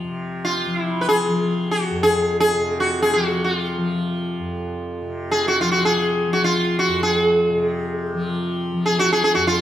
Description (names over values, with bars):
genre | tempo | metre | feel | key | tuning
indian classical, Hindustani | free time | none | none | unclear | A4 = 440 Hz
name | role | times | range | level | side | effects
tanpura | drone | 0.0-9.6 s | F2 to F3 | -24 LUFS | left 1 dB | none
sitar | melody | 0.4-9.6 s | F4 to B4 | -19 LUFS | equal | none
room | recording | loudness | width
wet recital hall reverb, RT60 1.7 s | minimal, uncompressed stereo recording | -18 LUFS | side -11 dB against mid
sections
0.1-9.6 A section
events
none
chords
none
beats
free time